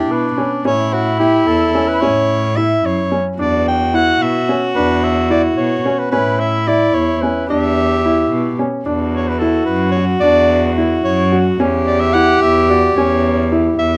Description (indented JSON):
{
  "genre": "contemporary instrumental, chamber music in an uneven meter",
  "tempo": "219 BPM (eighths)",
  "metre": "5/8",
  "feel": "straight",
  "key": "E dorian",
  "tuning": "A4 = 438 Hz",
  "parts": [
    { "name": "warm soprano saxophone", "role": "melody", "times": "0.0-14.0 s", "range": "F#4 to G5", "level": "-20 LUFS", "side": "equal", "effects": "none" },
    { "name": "dark viola", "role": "second line", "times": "0.0-14.0 s", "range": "D4 to G4", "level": "-21 LUFS", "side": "equal", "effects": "none" },
    { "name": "warm baby grand piano", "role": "arpeggios", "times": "0.0-13.9 s", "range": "C#4 to F#4", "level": "-20 LUFS", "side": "equal", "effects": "none" },
    { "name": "warm cello", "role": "bass", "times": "0.0-14.0 s", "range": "E2 to B2", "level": "-22 LUFS", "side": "equal", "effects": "none" }
  ],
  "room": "moderate booth ambience, RT60 0.2 s",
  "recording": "none",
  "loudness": "-15 LUFS",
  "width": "mono",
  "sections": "0.0-8.9 A section; 8.9-14.0 B section",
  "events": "none",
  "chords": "0.0 E5; 0.7 A; 3.4 E5; 6.1 A; 7.5 Em; 8.9 E7sus2; 11.6 Em6",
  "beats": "0.10 0.38 | 0.65 0.93 1.20 1.47 1.75 | 2.02 2.29 2.57 2.84 3.12 | 3.39 3.67 3.94 4.21 4.49 | 4.76 5.04 5.31 5.58 5.86 | 6.13 6.40 6.68 6.95 7.23 | 7.50 7.77 8.05 8.32 8.60 | 8.87 9.14 9.42 9.69 9.96 | 10.24 10.51 10.79 11.06 11.33 | 11.61 11.88 12.15 12.43 12.70 | 12.98 13.25 13.53 13.80"
}